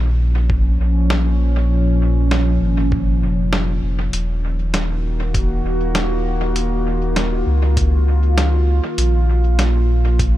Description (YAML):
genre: ambient dub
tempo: 99 BPM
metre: 4/4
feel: straight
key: Eb minor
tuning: A4 = 444 Hz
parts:
  - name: warbly tape-like pad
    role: sustained chords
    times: 0.0-10.4 s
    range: Bb2 to Gb4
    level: -22 LUFS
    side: equal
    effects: chorus, built-in reverb
  - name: warm sub bass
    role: bass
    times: 0.0-10.4 s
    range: Eb1 to Db2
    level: -16 LUFS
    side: equal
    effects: none
  - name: electronic kick drum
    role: drums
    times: 0.5-10.3 s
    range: none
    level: -20 LUFS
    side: equal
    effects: none
  - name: lo-fi sampler-style drum kit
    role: drums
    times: 1.1-10.3 s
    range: hi-hat, snare drum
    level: -24 LUFS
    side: equal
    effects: dub echo
room: little or no reverb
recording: none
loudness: -15 LUFS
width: side -14 dB against mid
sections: 0.0-10.4 A section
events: none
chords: 0.0 Bbm7; 4.1 Ebm7; 9.0 Bb5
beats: 0.50 1.10 | 1.71 2.31 2.92 3.53 | 4.13 4.74 5.35 5.95 | 6.56 7.16 7.77 8.38 | 8.98 9.59 10.19